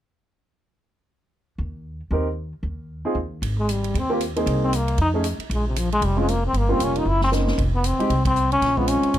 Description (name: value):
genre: jazz, small-group swing and bop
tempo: 230 BPM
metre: 4/4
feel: swing 60% on 8ths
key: Ab major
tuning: A4 = 441 Hz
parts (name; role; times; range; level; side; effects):
- upright bass; bass; 1.6-9.2 s; F1 to F2; -24 LUFS; equal; none
- warm upright piano; accompaniment; 2.1-9.1 s; G3 to Bb4; -24 LUFS; right 1 dB; none
- swinging big-band drum kit; drums; 3.4-9.2 s; hi-hat, kick drum, ride cymbal, snare drum; -30 LUFS; right 1 dB; none
- trombone with metal mute; melody; 3.6-9.2 s; C3 to Fb4; -23 LUFS; left 1 dB; plate reverb
room: light reverb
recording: close, detailed microphones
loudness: -20 LUFS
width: side -12 dB against mid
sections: 1.3-3.4 A section; 3.4-9.2 B section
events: drum fill 7.1-7.6; band accent 8.2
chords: 1.3 Eb6; 2.4 N.C.; 3.4 Abmaj9; 4.5 Cm7; 5.0 F7alt; 5.5 Bb7(no3); 6.5 Gm7b5; 7.1 Gb; 7.6 F5; 8.6 Bbm9